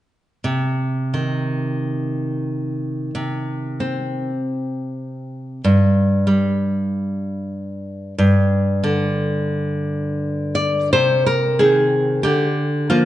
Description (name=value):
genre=romantic piece for solo classical guitar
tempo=75-100 BPM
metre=4/4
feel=rubato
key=C minor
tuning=A4 = 441 Hz
part: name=nylon-string guitar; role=solo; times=0.4-13.1 s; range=G2 to D5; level=-18 LUFS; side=equal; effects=none
room=moderate recital hall reverb, RT60 1.8 s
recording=nothing above 10.7 kHz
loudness=-18 LUFS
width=side -14 dB against mid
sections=0.4-10.9 A section; 10.9-13.1 B section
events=none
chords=0.4 Cm; 5.6 N.C.; 8.2 G5; 10.9 Cm; 12.3 Bb/D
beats=| 0.45 1.14 1.83 2.49 | 3.14 3.79 4.43 5.04 | 5.65 6.26 6.88 7.54 | 8.18 8.84 9.49 10.18 | 10.93 11.60 12.25 12.90